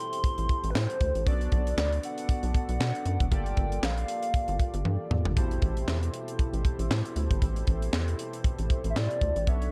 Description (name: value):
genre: early-eighties boogie funk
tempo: 117 BPM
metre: 4/4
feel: swing 56% on 16ths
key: A dorian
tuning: A4 = 440 Hz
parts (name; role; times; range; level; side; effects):
- hollow clarinet-like synth lead; melody; 0.0-5.1, 8.9-9.7 s; B4 to C6; -36 LUFS; equal; chorus, phaser
- chorused polysynth; accompaniment; 0.0-9.7 s; B2 to D5; -39 LUFS; equal; none
- tight funk drum kit; drums; 0.1-9.7 s; handclaps, hi-hat, kick drum, snare drum, toms; -31 LUFS; equal; none
- rubbery square bass; bass; 0.4-9.7 s; E1 to B2; -31 LUFS; equal; none
room: small room ambience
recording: dark, warm production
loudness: -28 LUFS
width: mono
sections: 0.0-9.7 A section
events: drum fill 4.9-5.4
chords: 0.0 Am9; 1.3 Bm7; 3.3 Gm9; 5.4 Am9